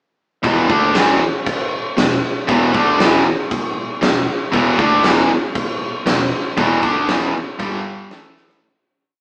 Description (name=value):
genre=hard rock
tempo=117 BPM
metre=4/4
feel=straight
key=E minor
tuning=A4 = 440 Hz
part: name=high-gain distorted guitar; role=riff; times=0.4-8.6 s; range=E2 to D4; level=-23 LUFS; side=equal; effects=distortion
part: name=overdriven electric guitar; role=riff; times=0.4-8.6 s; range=E2 to D4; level=-20 LUFS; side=equal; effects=none
part: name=fuzz fingered electric bass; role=bass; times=0.4-8.6 s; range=E1 to D2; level=-31 LUFS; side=equal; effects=overdrive
part: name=big rock drum kit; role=drums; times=0.4-8.6 s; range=crash cymbal, kick drum, snare drum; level=-21 LUFS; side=equal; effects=none
room=moderate large studio reverb, RT60 0.9 s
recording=band playing live in one room, small speaker sound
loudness=-17 LUFS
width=mono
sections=0.4-8.6 riff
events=fade-out 6.6-8.6; drum fill 8.4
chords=0.4 E5; 7.6 G5; 8.1 A5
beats=| 0.44 0.95 1.46 1.97 | 2.48 3.00 3.51 4.02 | 4.53 5.04 5.55 6.06 | 6.57 7.08 7.59 8.11